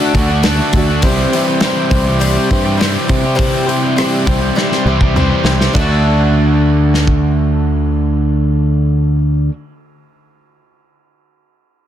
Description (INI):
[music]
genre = folk rock and heartland rock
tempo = 102 BPM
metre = 4/4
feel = straight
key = D mixolydian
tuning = A4 = 441 Hz
[part]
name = picked twelve-string acoustic guitar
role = accompaniment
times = 0.0-9.6 s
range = C3 to C5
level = -19 LUFS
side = left 3 dB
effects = none
[part]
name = crunchy overdriven guitar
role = riff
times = 0.0-9.5 s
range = C3 to G4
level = -16 LUFS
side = right 1 dB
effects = none
[part]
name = picked electric bass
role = bass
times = 0.1-9.5 s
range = C2 to C3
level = -16 LUFS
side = equal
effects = none
[part]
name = loose indie drum kit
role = drums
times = 0.1-7.2 s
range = hi-hat, kick drum, ride cymbal, rim click, snare drum, toms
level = -17 LUFS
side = equal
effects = none
[sound]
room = studio reverb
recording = dense, heavily limited modern master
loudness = -11 LUFS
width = side -10 dB against mid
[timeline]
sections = 0.0-5.7 A section; 5.7-8.1 B section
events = drum fill 4.6-5.7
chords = 0.0 D; 1.0 C; 5.7 D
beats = 0.43 | 1.02 1.61 2.20 2.79 | 3.38 3.97 4.56 5.15 | 5.74 6.33 6.92 7.51